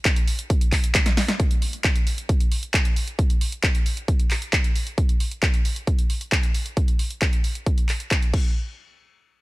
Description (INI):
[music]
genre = trance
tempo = 134 BPM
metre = 4/4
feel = straight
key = none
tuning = none
[part]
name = electronic kick drum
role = drums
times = 0.1-8.4 s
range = none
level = -20 LUFS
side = equal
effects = none
[part]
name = punchy analog drum machine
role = drums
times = 0.1-8.4 s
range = crash cymbal, handclaps, hi-hat, snare drum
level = -25 LUFS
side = equal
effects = none
[sound]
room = little or no reverb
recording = none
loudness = -20 LUFS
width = side -20 dB against mid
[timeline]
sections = 0.0-1.4 A section; 1.4-8.6 B section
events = drop 0.0-1.4; drum fill 0.9-1.4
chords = none